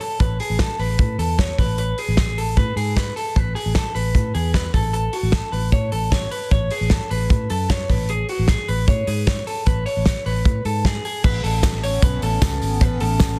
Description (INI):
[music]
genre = jangly indie pop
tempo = 152 BPM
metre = 4/4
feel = straight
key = A major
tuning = A4 = 442 Hz
[part]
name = electric guitar through a small old amp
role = arpeggios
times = 0.0-13.4 s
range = F#4 to C#5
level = -28 LUFS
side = equal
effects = digital delay
[part]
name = loose indie drum kit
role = drums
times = 0.0-13.3 s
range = crash cymbal, hi-hat, kick drum, ride cymbal, snare drum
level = -23 LUFS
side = equal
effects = none
[part]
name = vintage muted fingered electric bass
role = bass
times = 0.2-13.4 s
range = G#1 to A2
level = -25 LUFS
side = equal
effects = none
[part]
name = hollow soft pad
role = sustained chords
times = 11.5-13.4 s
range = A3 to C#4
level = -33 LUFS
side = equal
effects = chorus
[part]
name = tambourine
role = percussion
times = 11.6-13.3 s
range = none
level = -41 LUFS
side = equal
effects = none
[sound]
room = light reverb, studio reverb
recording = dense, heavily limited modern master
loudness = -20 LUFS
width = mono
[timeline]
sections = 0.0-11.2 A section; 11.2-13.4 B section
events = none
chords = 0.0 Aadd9; 1.6 E/A (rootless); 4.7 F#m/A (rootless); 11.2 Aadd9